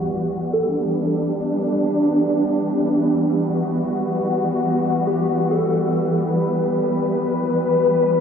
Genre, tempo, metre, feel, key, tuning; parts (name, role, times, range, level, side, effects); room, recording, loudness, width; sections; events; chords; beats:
half-time drum and bass; 172 BPM; 4/4; half-time; E minor; A4 = 443 Hz
warm studio string section; sustained chords; 0.0-8.2 s; E3 to B4; -18 LUFS; equal; low-pass filter
electronic hi-hat; drums; 0.0-8.1 s; -55 LUFS; right 3 dB
plucky unison lead; melody; 0.5-0.7, 5.1-6.0 s; G4 to A4; -26 LUFS; equal; analog chorus, diffuse ambient delay
wet lush hall reverb, RT60 2.2 s; dreamy mix soaked in reverb, low-pass filter, small room ambience; -18 LUFS; side -7 dB against mid
0.0-8.2 A section
filter sweep on string section 0.0-8.2; filter sweep 0.0-8.2
0.0 Emadd9
0.01 0.36 | 0.71 1.06 1.41 1.75 | 2.10 2.45 2.80 3.15 | 3.50 3.85 4.20 4.54 | 4.89 5.24 5.59 5.94 | 6.29 6.64 6.99 7.33 | 7.68 8.03